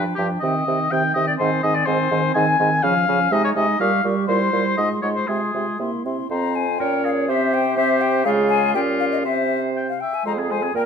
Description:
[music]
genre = quick classical-period movement for wind quintet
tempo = 123 BPM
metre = 2/4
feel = rubato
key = F minor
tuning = A4 = 441 Hz
[part]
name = mellow silver concert flute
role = melody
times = 0.0-10.8 s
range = Eb5 to Db6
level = -26 LUFS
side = left 11 dB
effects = none
[part]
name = warm oboe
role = second line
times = 0.0-10.9 s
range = F4 to Ab5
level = -22 LUFS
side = left 3 dB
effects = none
[part]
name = clear clarinet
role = accompaniment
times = 0.0-10.9 s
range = C4 to Db5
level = -27 LUFS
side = right 10 dB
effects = none
[part]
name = mellow French horn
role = accompaniment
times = 0.0-10.9 s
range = Eb3 to Db4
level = -25 LUFS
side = equal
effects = none
[part]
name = warm bassoon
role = bass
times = 0.0-10.9 s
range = F2 to Db3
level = -24 LUFS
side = right 3 dB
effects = none
[sound]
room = moderate scoring stage reverb, RT60 1.5 s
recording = none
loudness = -18 LUFS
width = side -6 dB against mid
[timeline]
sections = 0.0-6.3 A section; 6.3-10.9 B section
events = none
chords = 0.4 Cm; 1.4 Ab; 2.8 Db; 3.3 Ab/C; 3.8 Gm7b5/Bb; 4.3 C7/Bb; 4.8 Fm/Ab; 5.3 Fm/C; 5.8 C; 6.3 Fm; 6.8 Bbm; 7.3 C5; 8.3 Db; 8.7 Gm7b5/Bb; 9.2 C; 10.3 Fm

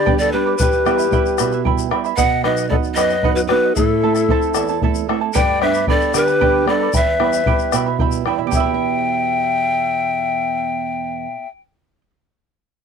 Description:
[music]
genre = andean folk, Andean ensemble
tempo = 76 BPM (dotted quarters)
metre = 6/8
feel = straight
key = E minor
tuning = A4 = 439 Hz
[part]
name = breathy large pan pipes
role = melody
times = 0.0-11.5 s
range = A4 to G5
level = -19 LUFS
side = equal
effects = slapback echo
[part]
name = bright large quena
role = second line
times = 0.0-11.5 s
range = E4 to E5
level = -22 LUFS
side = left 16 dB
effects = none
[part]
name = charango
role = accompaniment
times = 0.0-12.1 s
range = E4 to B5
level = -23 LUFS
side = right 16 dB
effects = none
[part]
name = nylon-string guitar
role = accompaniment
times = 0.0-11.7 s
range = E2 to E5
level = -23 LUFS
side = right 11 dB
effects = none
[part]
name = bombo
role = percussion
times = 0.1-8.8 s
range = none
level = -21 LUFS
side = left 3 dB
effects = none
[part]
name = tube shaker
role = percussion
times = 0.2-8.8 s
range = none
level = -29 LUFS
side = left 23 dB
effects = none
[sound]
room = little or no reverb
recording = dry, close 1970s-style studio recording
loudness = -15 LUFS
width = side -6 dB against mid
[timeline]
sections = 0.0-8.5 A section; 8.5-11.7 B section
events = none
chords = 0.0 G; 0.6 Em; 2.2 B; 3.8 Am; 5.3 G; 6.9 Em

